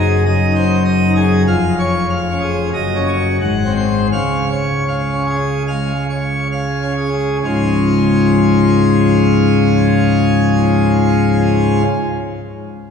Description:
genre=classical, organ toccata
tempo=63-100 BPM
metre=4/4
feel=straight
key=Db major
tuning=A4 = 442 Hz
part: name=pipe organ, plenum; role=solo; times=0.0-11.8 s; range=Db1 to Gb5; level=-13 LUFS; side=left 1 dB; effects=none
room=wet church reverb, RT60 3.3 s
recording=heard from further back in the room, studio ambience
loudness=-13 LUFS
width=side -6 dB against mid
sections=0.0-7.4 A section; 7.4-11.2 B section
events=slowing down 0.3-7.4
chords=0.0 Ab7/Gb; 1.5 Db/F; 2.7 Ebm7/Gb; 3.4 Ab7; 4.1 Db

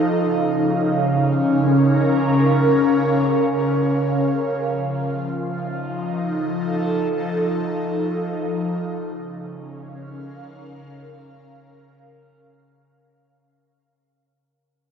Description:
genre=ambient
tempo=free time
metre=none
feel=none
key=unclear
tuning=A4 = 440 Hz
part: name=airy breathy pad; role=solo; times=0.0-13.5 s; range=Db3 to F5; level=-19 LUFS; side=equal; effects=chorus, phaser, ping-pong delay
room=wet cathedral reverb, RT60 6.3 s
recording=worn, warbling old tape, cassette tape, warbly pitch drift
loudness=-18 LUFS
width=side -7 dB against mid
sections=0.0-13.5 A section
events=fade-out 1.7-13.5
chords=0.2 Db6; 4.6 F7; 9.1 Db6

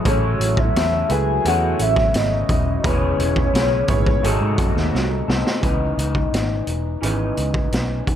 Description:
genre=indie pop, bedroom pop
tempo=86 BPM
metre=4/4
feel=straight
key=C# minor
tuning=A4 = 440 Hz
part: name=electric guitar through a small old amp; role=accompaniment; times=0.0-8.2 s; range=G#2 to B4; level=-26 LUFS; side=left 4 dB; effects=lush chorus, warbly pitch drift
part: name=warm upright piano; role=accompaniment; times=0.0-8.2 s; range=E3 to C#5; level=-28 LUFS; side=right 5 dB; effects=cassette tape
part: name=phased analog pad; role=sustained chords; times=0.0-5.6 s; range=B#2 to F#4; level=-30 LUFS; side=left 1 dB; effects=phaser, chorus
part: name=soft octave-layered synth lead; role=melody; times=0.1-4.9 s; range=C#5 to G#5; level=-22 LUFS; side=left 2 dB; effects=phaser, lush chorus, tape echo
part: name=vintage muted fingered electric bass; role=bass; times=0.1-8.2 s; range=D#1 to G#2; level=-22 LUFS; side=equal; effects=none
part: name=raw garage drum kit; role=drums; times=0.1-8.2 s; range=hi-hat, kick drum, snare drum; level=-22 LUFS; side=equal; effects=none
room=little or no reverb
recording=none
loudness=-17 LUFS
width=side -10 dB against mid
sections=0.0-5.6 A section; 5.6-8.2 B section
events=drum fill 4.9-5.6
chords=0.1 Amaj7; 2.8 E6; 4.2 G#7b9; 5.6 C#m9

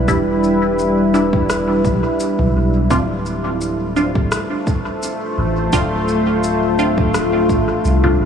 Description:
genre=ambient dub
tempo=85 BPM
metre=4/4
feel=swing 54% on 16ths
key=D dorian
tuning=A4 = 440 Hz
part: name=deep dark ambient pad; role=sustained chords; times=0.0-8.3 s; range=G3 to D5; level=-17 LUFS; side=left 1 dB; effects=chorus, built-in reverb
part: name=soft dub sub bass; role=bass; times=0.0-8.3 s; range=D1 to C2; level=-21 LUFS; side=equal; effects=tube saturation
part: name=filtered dub chord stab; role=stabs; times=0.1-8.3 s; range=G3 to F4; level=-23 LUFS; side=right 2 dB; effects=phaser, dub echo
part: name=electronic kick drum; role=drums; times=0.1-8.2 s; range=none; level=-20 LUFS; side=equal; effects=overdrive, small room ambience
part: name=electronic shaker and rim click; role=drums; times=0.1-8.0 s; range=none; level=-28 LUFS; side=left 1 dB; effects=small room ambience, dub echo
room=wet huge ambient reverb, RT60 8.9 s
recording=dreamy mix soaked in reverb, small room reverb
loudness=-15 LUFS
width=side -7 dB against mid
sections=0.0-8.3 A section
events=none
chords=0.0 Em7; 2.9 Dm7

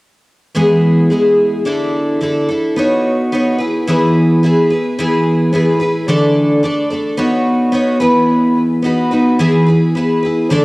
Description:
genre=rock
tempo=108 BPM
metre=4/4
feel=straight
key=E major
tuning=A4 = 438 Hz
part: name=picked twelve-string acoustic guitar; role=solo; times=0.5-10.6 s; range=E2 to D5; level=-11 LUFS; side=equal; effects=cassette tape
room=light reverb, small room ambience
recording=home recording on cassette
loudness=-11 LUFS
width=side -22 dB against mid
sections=0.5-9.4 A section; 9.4-10.6 B section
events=none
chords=0.5 E; 1.7 Dsus2; 2.8 Badd9; 3.6 E; 6.1 Dsus2; 7.2 Badd9; 8.0 E; 8.8 B; 9.4 E

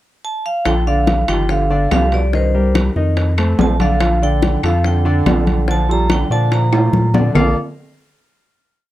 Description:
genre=Afro-Cuban jazz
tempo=143 BPM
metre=4/4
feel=straight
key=Bb major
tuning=A4 = 436 Hz
part: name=vibraphone with medium hard mallets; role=melody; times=0.2-7.6 s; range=C5 to D6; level=-21 LUFS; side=equal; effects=none
part: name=warm trombone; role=second line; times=0.7-7.5 s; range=G2 to Bb3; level=-24 LUFS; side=right 6 dB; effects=none
part: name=clear concert grand piano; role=accompaniment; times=0.7-7.5 s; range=D3 to F5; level=-21 LUFS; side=left 2 dB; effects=none
part: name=warm sub bass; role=bass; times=0.7-7.5 s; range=G1 to Bb2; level=-16 LUFS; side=equal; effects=none
part: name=bongos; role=percussion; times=0.7-7.4 s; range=none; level=-23 LUFS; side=left 5 dB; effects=none
part: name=claves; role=percussion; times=0.7-7.5 s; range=none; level=-27 LUFS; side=left 14 dB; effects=none
part: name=congas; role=percussion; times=0.7-7.4 s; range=none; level=-21 LUFS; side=left 1 dB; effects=none
part: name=timbales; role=percussion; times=0.7-7.5 s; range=none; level=-24 LUFS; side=right 4 dB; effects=none
room=little or no reverb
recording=dry, close 1970s-style studio recording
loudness=-13 LUFS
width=side -14 dB against mid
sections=0.0-0.7 pickup bar; 0.7-7.4 A section; 7.4-8.9 final chord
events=drum fill 6.7-7.4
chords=0.0 N.C.; 0.7 Bbmaj7; 1.5 G5; 2.3 Cm7; 3.2 F7; 4.0 Bbmaj7

